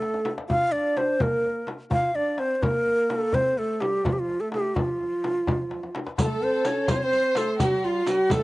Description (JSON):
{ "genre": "Persian modal ensemble", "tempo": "84 BPM (dotted quarters)", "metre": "6/8", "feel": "straight", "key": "F dastgah mahur", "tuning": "A4 = 440 Hz", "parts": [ { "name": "breathy bright low ney", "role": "melody", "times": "0.0-8.4 s", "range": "F4 to F5", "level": "-24 LUFS", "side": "equal", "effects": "none" }, { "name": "mellow French horn", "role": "second line", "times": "0.0-8.4 s", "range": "F3 to F4", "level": "-32 LUFS", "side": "right 2 dB", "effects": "slapback echo" }, { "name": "tombak", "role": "percussion", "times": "0.0-8.4 s", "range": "none", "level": "-32 LUFS", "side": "left 1 dB", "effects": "none" }, { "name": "frame drum", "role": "percussion", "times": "0.3-8.4 s", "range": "none", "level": "-29 LUFS", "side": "left 1 dB", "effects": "none" }, { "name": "rich chamber violin section", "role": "second line", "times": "6.2-8.4 s", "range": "F4 to C5", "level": "-29 LUFS", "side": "equal", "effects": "none" }, { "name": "riq", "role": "percussion", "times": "6.2-8.4 s", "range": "none", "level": "-34 LUFS", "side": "right 3 dB", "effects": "none" } ], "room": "little or no reverb", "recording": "recorded outdoors, with no room sound, nothing above 10.6 kHz", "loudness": "-22 LUFS", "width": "side -19 dB against mid", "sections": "0.0-6.2 A section; 6.2-8.4 B section", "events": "drum fill 0.0-0.5, 5.7-6.2", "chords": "none" }